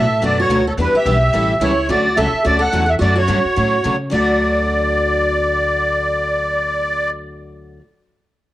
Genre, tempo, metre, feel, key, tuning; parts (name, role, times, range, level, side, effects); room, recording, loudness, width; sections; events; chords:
acoustic string swing (jazz manouche); 216 BPM; 4/4; swing 57% on 8ths; D major; A4 = 439 Hz
musette accordion; melody; 0.0-7.1 s; A4 to F#5; -17 LUFS; right 1 dB; cassette tape
picked steel-string acoustic guitar; second line; 0.0-7.8 s; C#4 to A4; -24 LUFS; right 1 dB
picked steel-string acoustic guitar; accompaniment; 0.0-7.8 s; B2 to A4; -24 LUFS; left 4 dB
picked steel-string acoustic guitar; accompaniment; 0.0-7.8 s; B2 to B4; -26 LUFS; right 2 dB
upright bass; bass; 0.0-7.8 s; A1 to C#3; -22 LUFS; equal
moderate spring reverb, RT60 1.4 s, small room reverb; home recording on cassette; -14 LUFS; side -15 dB against mid
0.0-4.1 A section; 4.1-6.3 B section
0.0 Bm7; 0.8 Em7; 1.3 A7; 1.9 Dmaj7; 4.1 D